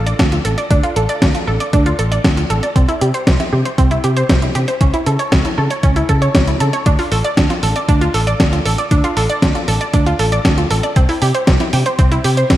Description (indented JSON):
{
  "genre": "italo disco",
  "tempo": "117 BPM",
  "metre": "4/4",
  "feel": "straight",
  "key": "D minor",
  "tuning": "A4 = 440 Hz",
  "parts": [
    { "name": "fingered electric bass with an envelope filter", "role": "bass", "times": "0.0-12.6 s", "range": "A1 to C#3", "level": "-17 LUFS", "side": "equal", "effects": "none" },
    { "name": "analog pluck", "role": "arpeggios", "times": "0.1-12.6 s", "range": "C4 to D5", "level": "-18 LUFS", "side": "right 2 dB", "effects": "chorus, ping-pong delay" },
    { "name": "clean 12-bit digital drum machine", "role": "drums", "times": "0.1-12.6 s", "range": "hi-hat, snare drum", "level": "-19 LUFS", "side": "equal", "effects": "gated reverb" },
    { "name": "electronic kick drum", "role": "drums", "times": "0.2-12.6 s", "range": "none", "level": "-15 LUFS", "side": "equal", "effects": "none" }
  ],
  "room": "moderate lush hall reverb, RT60 1.8 s",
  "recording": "bright 1980s-style digital production, vinyl crackle",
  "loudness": "-12 LUFS",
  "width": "side -14 dB against mid",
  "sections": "0.0-12.6 A section",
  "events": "none",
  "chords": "0.0 Dm; 2.8 C; 4.8 A/C#; 6.9 Dm; 11.0 C"
}